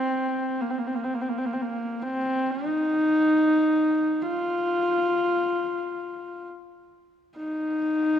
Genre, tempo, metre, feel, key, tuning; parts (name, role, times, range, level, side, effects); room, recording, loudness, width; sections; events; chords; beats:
mongolian traditional, Mongolian folk; free time; A4 = 440 Hz
rich horsehead fiddle; solo; 0.0-8.2 s; Bb3 to F4; -23 LUFS; equal
moderate concert hall reverb, RT60 2.5 s; minimal, uncompressed stereo recording; -23 LUFS; side -9 dB against mid
0.0-8.2 A section
free time